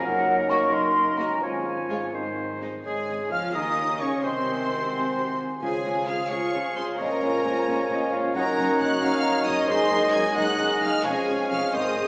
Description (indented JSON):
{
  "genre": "classical",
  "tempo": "87 BPM (dotted quarters)",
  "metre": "6/8",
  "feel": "rubato",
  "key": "Db major",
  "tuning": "A4 = 439 Hz",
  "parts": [
    { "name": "bright large flute ensemble", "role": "second line", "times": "0.0-12.1 s", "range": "Gb5 to F6", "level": "-32 LUFS", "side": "equal", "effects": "none" },
    { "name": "clear oboe", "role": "second line", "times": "0.0-12.1 s", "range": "Ab4 to F5", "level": "-34 LUFS", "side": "equal", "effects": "none" },
    { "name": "mellow bassoon", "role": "accompaniment", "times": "0.0-12.1 s", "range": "Eb3 to F4", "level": "-34 LUFS", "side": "equal", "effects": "none" },
    { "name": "concert harp", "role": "arpeggios", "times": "0.0-12.1 s", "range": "F2 to Db5", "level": "-35 LUFS", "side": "equal", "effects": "none" },
    { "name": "mellow French horn section", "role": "sustained chords", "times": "0.1-12.1 s", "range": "Gb3 to F4", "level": "-35 LUFS", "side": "equal", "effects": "none" },
    { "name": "rich symphonic cello section", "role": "bass", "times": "0.1-12.1 s", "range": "F2 to F3", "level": "-40 LUFS", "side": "equal", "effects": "none" },
    { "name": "warm symphonic double bass section", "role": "bass", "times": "0.1-12.1 s", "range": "F1 to F2", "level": "-44 LUFS", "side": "equal", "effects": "none" },
    { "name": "rich symphonic violin section", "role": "melody", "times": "0.5-12.1 s", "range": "C5 to Ab6", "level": "-35 LUFS", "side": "equal", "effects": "none" },
    { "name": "rich symphonic violin section", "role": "second line", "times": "0.5-12.1 s", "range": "Eb4 to Ab5", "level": "-36 LUFS", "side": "equal", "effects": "none" },
    { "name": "warm symphonic viola section", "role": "accompaniment", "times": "0.5-12.1 s", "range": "Ab3 to Ab4", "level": "-33 LUFS", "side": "equal", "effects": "none" },
    { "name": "mellow clarinet", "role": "second line", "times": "2.9-12.1 s", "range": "C5 to Gb5", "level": "-34 LUFS", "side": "equal", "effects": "none" },
    { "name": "timpani", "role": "percussion", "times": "5.6-6.3 s", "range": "Db3", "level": "-49 LUFS", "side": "equal", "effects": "none" }
  ],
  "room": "wet scoring stage reverb, RT60 2.0 s",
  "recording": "heard from further back in the room, small speaker sound",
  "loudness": "-25 LUFS",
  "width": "mono",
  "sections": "0.0-2.8 A section; 2.8-12.1 B section",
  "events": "none",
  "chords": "0.1 Ebm/Gb; 1.4 Db/Ab; 2.1 Ab; 2.8 Db/Ab; 4.2 Ab7/C; 5.6 Db; 7.0 Bbm7; 8.4 Ebm7/Gb; 9.7 Ab7/Gb; 11.0 Db/F"
}